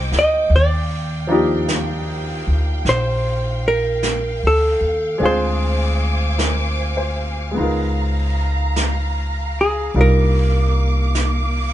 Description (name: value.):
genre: jazz ballad.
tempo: 51 BPM.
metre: 4/4.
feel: swing 68% on 8ths.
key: unclear.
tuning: A4 = 441 Hz.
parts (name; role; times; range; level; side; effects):
clear baby grand piano; accompaniment; 0.0-11.7 s; D3 to C5; -24 LUFS; equal; none.
warm symphonic string section; sustained chords; 0.0-11.7 s; Bb3 to D6; -28 LUFS; right 1 dB; none.
upright bass; bass; 0.0-11.7 s; Bb1 to Eb2; -19 LUFS; equal; none.
jazz brush drum kit; drums; 0.1-11.7 s; brushed snare drum, hi-hat, snare drum; -28 LUFS; right 1 dB; none.
hollow-body jazz guitar; melody; 0.2-11.7 s; Ab4 to Eb5; -19 LUFS; right 1 dB; none.
room: light reverb.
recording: band playing live in one room, nothing above 10.5 kHz.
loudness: -16 LUFS.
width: side -13 dB against mid.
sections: 0.0-11.7 A section.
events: none.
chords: 0.0 Bb13 (rootless); 0.5 Ebmaj9; 5.2 Dm7b5; 7.6 Db13; 10.0 Cm11.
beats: | 0.51 1.69 2.86 4.03 | 5.21 6.39 7.57 8.76 | 9.95 11.14.